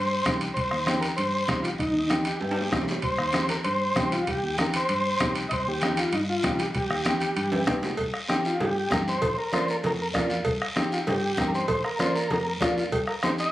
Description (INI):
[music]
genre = latin, cumbia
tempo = 194 BPM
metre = 4/4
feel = straight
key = C minor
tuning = A4 = 440 Hz
[part]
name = overdriven combo organ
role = melody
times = 0.0-13.5 s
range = Eb4 to Eb5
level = -27 LUFS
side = equal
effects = none
[part]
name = fingered electric bass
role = bass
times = 0.0-13.1 s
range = Bb1 to G2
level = -32 LUFS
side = equal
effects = none
[part]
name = clear upright piano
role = accompaniment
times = 0.3-13.5 s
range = Bb3 to G4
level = -29 LUFS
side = left 1 dB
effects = none
[part]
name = bombo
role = percussion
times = 0.3-13.4 s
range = none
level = -31 LUFS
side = equal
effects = none
[part]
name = congas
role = percussion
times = 0.3-13.4 s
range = none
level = -32 LUFS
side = equal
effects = none
[part]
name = guiro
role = percussion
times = 0.3-13.5 s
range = none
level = -35 LUFS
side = equal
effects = none
[part]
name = timbales and cowbell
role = percussion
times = 0.3-13.4 s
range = none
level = -32 LUFS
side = right 2 dB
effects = none
[sound]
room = moderate studio reverb, RT60 0.6 s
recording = recorded on a phone in the room, studio ambience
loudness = -23 LUFS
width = side -15 dB against mid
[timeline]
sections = 0.0-8.0 A section; 8.0-13.5 B section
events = drum fill 2.4-3.0, 7.5-8.0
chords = 0.0 Cm; 9.2 Bb; 10.5 Cm; 11.7 Bb; 12.9 Cm